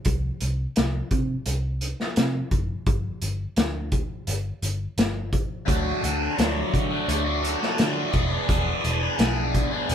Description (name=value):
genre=psychedelic rock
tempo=85 BPM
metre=4/4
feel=straight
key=unclear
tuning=A4 = 440 Hz
part: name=vintage drum kit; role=drums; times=0.0-9.9 s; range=hi-hat, kick drum, snare drum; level=-25 LUFS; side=equal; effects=none
part: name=vintage muted picked electric bass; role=bass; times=0.1-9.9 s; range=E1 to D3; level=-27 LUFS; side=equal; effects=none
part: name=cranked stack guitar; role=riff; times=5.7-9.9 s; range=D3 to G#4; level=-24 LUFS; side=equal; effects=overdrive, phaser
room=light reverb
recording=band playing live in one room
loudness=-22 LUFS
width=side -9 dB against mid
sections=0.0-9.9 A section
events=none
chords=0.1 N.C.; 2.9 G5; 5.7 D; 8.1 E7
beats=| 0.07 0.77 1.47 2.17 | 2.87 3.57 4.27 4.97 | 5.68 6.38 7.08 7.79 | 8.49 9.19 9.89